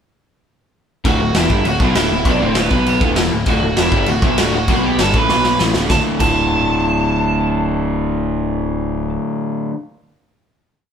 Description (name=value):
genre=punk rock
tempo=197 BPM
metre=4/4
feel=straight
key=D major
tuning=A4 = 441 Hz
part: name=crunchy overdriven guitar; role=riff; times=1.0-9.7 s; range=D2 to B3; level=-18 LUFS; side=left 1 dB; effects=none
part: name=growling picked electric bass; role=bass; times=1.0-9.2 s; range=D1 to B1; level=-22 LUFS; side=equal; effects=overdrive
part: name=bluesy overdriven lead guitar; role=melody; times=1.1-9.1 s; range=B3 to B5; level=-20 LUFS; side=right 2 dB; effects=distortion
part: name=raw garage drum kit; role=drums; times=1.1-6.3 s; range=crash cymbal, kick drum, snare drum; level=-18 LUFS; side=equal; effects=none
room=light reverb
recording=band playing live in one room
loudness=-14 LUFS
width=side -7 dB against mid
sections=1.1-5.9 riff; 5.9-8.3 final chord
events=drum fill 5.3-5.9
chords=1.1 D; 2.7 B5; 3.0 D; 4.7 B5; 5.0 D5; 5.3 B5; 5.6 D5